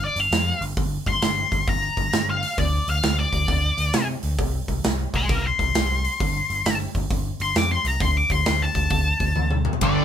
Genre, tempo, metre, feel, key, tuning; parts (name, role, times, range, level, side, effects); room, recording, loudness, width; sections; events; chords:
blues rock power trio and southern rock; 133 BPM; 4/4; swing 65% on 8ths; G minor; A4 = 439 Hz
octave-fuzz lead guitar; melody; 0.0-10.0 s; D5 to D6; -23 LUFS; left 3 dB; wah, distortion
overdriven picked electric bass; bass; 0.0-10.0 s; G1 to C3; -25 LUFS; equal
big rock drum kit; drums; 0.2-10.0 s; hi-hat, kick drum, ride cymbal, snare drum, toms; -25 LUFS; right 1 dB
overdriven electric guitar; riff; 9.8-10.0 s; G2 to D3; -19 LUFS; equal; spring reverb
light reverb; band playing live in one room; -20 LUFS; side -9 dB against mid
0.0-9.8 A section
lead electric guitar solo 0.0-9.8; drum fill 9.4-9.8
0.0 Gm7; 2.6 N.C.; 6.2 Gsus4; 8.0 D5